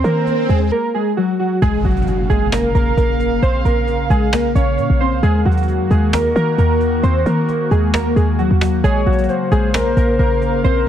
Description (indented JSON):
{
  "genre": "hip hop, trap",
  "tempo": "133 BPM",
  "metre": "4/4",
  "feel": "half-time",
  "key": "Bb minor",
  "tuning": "A4 = 444 Hz",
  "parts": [
    { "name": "warbly lo-fi synth keys", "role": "melody", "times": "0.0-10.8 s", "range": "Gb3 to Db5", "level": "-18 LUFS", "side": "equal", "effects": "chorus, low-pass filter" },
    { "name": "short 808-style bass", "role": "bass", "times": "0.0-10.9 s", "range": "Ab1 to Eb3", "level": "-16 LUFS", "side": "equal", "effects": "none" },
    { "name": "cajon", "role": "drums", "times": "0.0-10.7 s", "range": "none", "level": "-25 LUFS", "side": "equal", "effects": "none" },
    { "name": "swell and impact", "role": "sound effects", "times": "0.0-3.4 s", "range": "none", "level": "-24 LUFS", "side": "right 1 dB", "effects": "none" },
    { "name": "warbly tape-like pad", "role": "sustained chords", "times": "2.0-10.9 s", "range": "Db3 to F5", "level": "-23 LUFS", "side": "equal", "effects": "chorus, built-in reverb, phaser" },
    { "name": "gliding portamento lead", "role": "second line", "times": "8.8-10.9 s", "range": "Bb4 to Db5", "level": "-21 LUFS", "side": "left 4 dB", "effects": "chorus, tape echo" }
  ],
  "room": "digital ambience",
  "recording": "dense, heavily limited modern master",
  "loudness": "-14 LUFS",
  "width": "side -10 dB against mid",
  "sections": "0.0-1.6 A section; 1.6-10.9 B section",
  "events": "swell 0.0-1.6; break 0.7-1.6; impact 1.6-3.4",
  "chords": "0.0 Ebm; 1.6 Bbm; 5.2 Ebm; 8.8 Bbm"
}